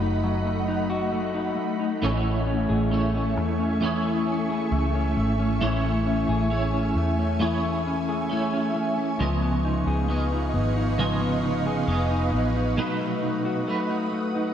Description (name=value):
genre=dream pop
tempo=67 BPM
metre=4/4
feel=straight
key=A lydian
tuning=A4 = 442 Hz
part: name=ethereal airy pad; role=sustained chords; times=0.0-14.5 s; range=A3 to D#6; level=-29 LUFS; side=right 1 dB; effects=ensemble chorus, built-in reverb
part: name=mellow electric guitar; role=arpeggios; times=0.0-14.5 s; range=E3 to G#4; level=-27 LUFS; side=left 3 dB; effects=wide subtle chorus, tape echo
part: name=vintage muted fingered electric bass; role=bass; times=0.0-12.8 s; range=E#1 to E2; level=-27 LUFS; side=equal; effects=none
part: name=clean electric guitar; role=accompaniment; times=2.0-14.5 s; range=B2 to D#5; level=-28 LUFS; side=right 3 dB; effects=tremolo, ensemble chorus
room=moderate lush hall reverb, RT60 2.7 s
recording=dark, warm production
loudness=-22 LUFS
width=side -9 dB against mid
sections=0.0-14.5 A section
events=break 12.8-14.5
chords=0.0 B7; 2.0 Amaj7; 9.2 C#9; 12.8 B7